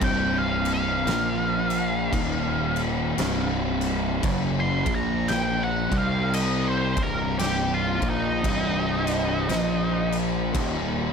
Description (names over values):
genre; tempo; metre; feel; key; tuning
stoner and doom metal; 57 BPM; 4/4; swing 60% on 8ths; C minor; A4 = 437 Hz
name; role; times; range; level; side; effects
octave-fuzz lead guitar; melody; 0.0-10.2 s; Eb4 to C6; -28 LUFS; equal; wah, distortion, analog delay
fuzz guitar; riff; 0.0-11.1 s; C2 to C4; -26 LUFS; equal; distortion
fuzz fingered electric bass; bass; 0.0-11.1 s; C1 to C2; -30 LUFS; equal; overdrive
oversized low-tuned drum kit; drums; 0.0-10.8 s; crash cymbal, kick drum, snare drum; -29 LUFS; left 1 dB; none
room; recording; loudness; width
studio reverb; none; -22 LUFS; side -6 dB against mid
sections
0.0-11.1 A section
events
lead electric guitar solo 0.0-11.1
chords
0.0 C5; 1.1 Bb5; 2.1 Eb5; 3.2 C5; 4.8 Bb5; 5.8 Cm; 9.5 Bb5; 10.5 Eb5